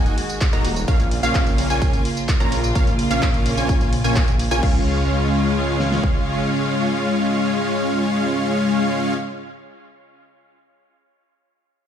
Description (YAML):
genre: EDM, festival progressive house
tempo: 128 BPM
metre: 4/4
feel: straight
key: Db major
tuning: A4 = 438 Hz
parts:
  - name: dark studio string section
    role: sustained chords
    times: 0.0-9.1 s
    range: Db3 to Gb4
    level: -28 LUFS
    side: right 2 dB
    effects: sidechain pumping
  - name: wide unison pluck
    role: arpeggios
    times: 0.0-9.4 s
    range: F5 to Bb5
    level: -28 LUFS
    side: equal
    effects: analog chorus, sidechain pumping, dub echo
  - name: dense compressed supersaw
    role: riff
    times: 0.0-9.1 s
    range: Ab3 to Bb5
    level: -21 LUFS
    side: left 1 dB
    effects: sidechain pumping, dub echo
  - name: detuned saw bass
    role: bass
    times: 0.0-6.0 s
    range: Eb1 to Db2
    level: -23 LUFS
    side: equal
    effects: sidechain pumping
  - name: big-room dance drum kit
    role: drums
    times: 0.1-4.7 s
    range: crash cymbal, handclaps, hi-hat, ride cymbal, tambourine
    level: -29 LUFS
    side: equal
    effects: none
  - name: big-room dance drum kit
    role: drums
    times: 0.4-6.1 s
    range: kick drum, snare drum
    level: -19 LUFS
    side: equal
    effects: none
room: light reverb, digital ambience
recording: played on a big sound system in a bare room, stone room reverb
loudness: -17 LUFS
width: side -9 dB against mid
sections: 0.0-4.6 A section; 4.6-8.4 B section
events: drop 0.0-4.6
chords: 0.0 Ebm; 0.9 Bbm; 4.6 Db